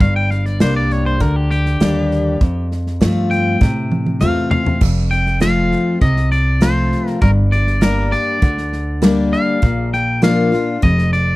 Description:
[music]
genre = honky-tonk and classic country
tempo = 100 BPM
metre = 4/4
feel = straight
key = unclear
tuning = A4 = 440 Hz
[part]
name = twangy electric guitar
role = melody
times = 0.0-11.4 s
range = G4 to G5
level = -21 LUFS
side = equal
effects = none
[part]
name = picked steel-string acoustic guitar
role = accompaniment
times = 0.0-11.4 s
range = F2 to G4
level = -18 LUFS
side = left 2 dB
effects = none
[part]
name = upright bass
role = bass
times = 0.0-11.4 s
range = F1 to A2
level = -18 LUFS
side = equal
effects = none
[part]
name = natural country drum kit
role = drums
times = 0.0-11.2 s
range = crash cymbal, hi-hat, kick drum, snare drum, toms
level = -17 LUFS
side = right 1 dB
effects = none
[sound]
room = little or no reverb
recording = dry, close 1970s-style studio recording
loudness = -13 LUFS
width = side -19 dB against mid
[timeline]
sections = 0.0-4.8 A section; 4.8-11.4 B section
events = clean electric guitar solo 0.0-4.8; drum fill 3.6-4.8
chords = 0.0 Gm; 2.4 F; 7.2 Gm; 9.6 Bb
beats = | 0.01 0.61 1.21 1.81 | 2.41 3.01 3.61 4.21 | 4.82 5.42 6.02 6.62 | 7.22 7.82 8.42 9.02 | 9.62 10.23 10.83

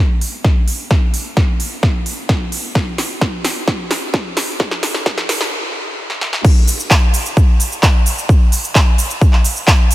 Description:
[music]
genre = EDM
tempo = 130 BPM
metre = 4/4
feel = straight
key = none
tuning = none
[part]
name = big-room dance drum kit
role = drums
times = 0.2-9.9 s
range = cabasa, crash cymbal, handclaps, hi-hat, snare drum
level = -18 LUFS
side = equal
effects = overdrive, high-pass filter on hats, high-pass filter on snare, high-pass filter on cymbals, high-pass filter on perc, high-pass filter on room
[part]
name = electronic kick drum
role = drums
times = 0.4-9.8 s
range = none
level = -12 LUFS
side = equal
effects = overdrive
[sound]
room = light reverb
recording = high-pass filter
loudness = -13 LUFS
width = side -16 dB against mid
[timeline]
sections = 0.0-6.4 A section; 6.4-9.9 B section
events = build-up 0.0-6.4; drum fill 0.0-5.5, 6.1-6.4; filter sweep 0.0-6.4; stop 5.5-6.4; drop 6.4-9.9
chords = none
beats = 0.45 | 0.91 1.37 1.83 2.29 | 2.75 3.21 3.68 4.14 | 4.60 5.06 5.52 5.98 | 6.45 6.91 7.37 7.83 | 8.29 8.75 9.21 9.68

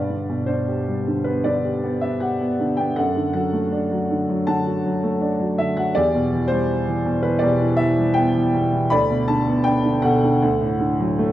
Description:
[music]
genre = classical, lyrical solo piano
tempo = 80 BPM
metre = 4/4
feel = rubato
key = unclear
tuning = A4 = 440 Hz
[part]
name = warm concert grand piano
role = solo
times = 0.0-11.3 s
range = D2 to B5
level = -18 LUFS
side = equal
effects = none
[sound]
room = moderate recital hall reverb, RT60 1.6 s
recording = dark, warm production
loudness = -18 LUFS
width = side -13 dB against mid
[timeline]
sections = 0.0-11.3 A section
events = none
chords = 0.0 G; 3.0 D/F#; 5.9 Em; 8.9 D6; 10.4 D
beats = 0.67 1.44 2.21 | 2.97 3.72 4.47 5.22 | 5.95 6.68 7.42 8.15 | 8.90 9.65 10.40 11.18

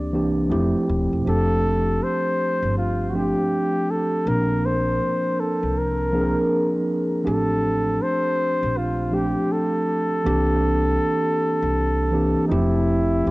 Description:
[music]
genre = lo-fi hip hop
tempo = 80 BPM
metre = 4/4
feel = swing 62% on 16ths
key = F major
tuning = A4 = 440 Hz
[part]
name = breathy flugelhorn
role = melody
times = 0.0-13.3 s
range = Eb4 to D5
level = -24 LUFS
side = equal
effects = none
[part]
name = mellow tine electric piano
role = accompaniment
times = 0.0-13.3 s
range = E3 to Bb4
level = -22 LUFS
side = right 1 dB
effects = slow stereo tremolo, cassette tape
[part]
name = upright bass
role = bass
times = 0.0-13.3 s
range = Eb1 to D2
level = -25 LUFS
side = equal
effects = transformer saturation
[sound]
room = light reverb, small room reverb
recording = worn, warbling old tape, cassette tape, warbly pitch drift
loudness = -19 LUFS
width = side -20 dB against mid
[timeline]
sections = 0.0-1.3 A section; 1.3-13.3 B section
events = none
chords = 0.0 C7; 0.5 Fmaj7; 1.3 F6; 4.3 Bbadd9; 7.3 F6/A; 10.3 C7; 12.5 Fmaj7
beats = 0.50 | 1.25 2.00 2.75 3.50 | 4.25 5.00 5.75 6.50 | 7.25 8.00 8.75 9.50 | 10.25 11.00 11.75 12.50 | 13.25

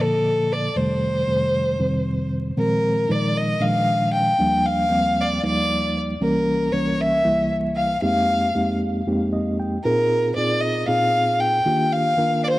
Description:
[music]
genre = jazz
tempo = 231 BPM (eighths)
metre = 7/8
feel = straight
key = Bb mixolydian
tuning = A4 = 440 Hz
[part]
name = clear violin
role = melody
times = 0.0-12.6 s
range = A4 to G5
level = -21 LUFS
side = left 1 dB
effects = none
[part]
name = mellow reed electric piano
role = accompaniment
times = 0.0-12.6 s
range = C2 to G5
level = -22 LUFS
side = equal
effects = fast tremolo
[sound]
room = light reverb, small room ambience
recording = dark, warm production, vinyl crackle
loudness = -18 LUFS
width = side -17 dB against mid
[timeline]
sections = 0.0-2.6 A section; 2.6-12.6 B section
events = reed electric piano fill 9.1-9.8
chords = 0.0 Bbmaj7; 0.8 F9; 2.6 Bb9sus4; 4.4 Ebmaj9; 6.2 C7b9; 8.0 Fm11; 9.8 Bb9sus4; 11.7 Ebmaj9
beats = 0.23 0.49 | 0.76 1.01 1.28 1.54 1.80 2.06 2.32 | 2.58 2.84 3.10 3.35 3.62 3.88 4.13 | 4.39 4.65 4.91 5.17 5.43 5.69 5.95 | 6.21 6.47 6.73 6.99 7.25 7.50 7.76 | 8.02 8.28 8.54 8.80 9.06 9.32 9.58 | 9.84 10.10 10.36 10.62 10.87 11.13 11.39 | 11.65 11.91 12.17 12.43

